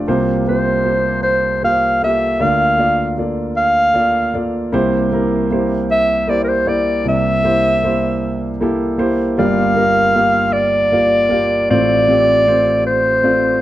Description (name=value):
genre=acoustic folk-pop ballad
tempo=52 BPM (dotted quarters)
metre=6/8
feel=straight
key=unclear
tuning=A4 = 440 Hz
part: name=warm concert grand piano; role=accompaniment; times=0.0-13.6 s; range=G1 to F5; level=-17 LUFS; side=equal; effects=none
part: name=breathy clarinet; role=melody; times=0.5-13.6 s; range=Bb4 to F5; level=-14 LUFS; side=equal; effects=none
room=moderate large studio reverb, RT60 0.8 s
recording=dark, warm production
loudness=-13 LUFS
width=side -14 dB against mid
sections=0.0-9.4 A section; 9.4-13.6 B section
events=none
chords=0.1 C7sus4; 2.4 Bbmaj7/D; 4.7 C7; 9.4 Gm7; 11.7 F/A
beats=| 0.07 1.24 | 2.40 3.56 | 4.73 5.89 | 7.05 8.21 | 9.38 10.54 | 11.70 12.86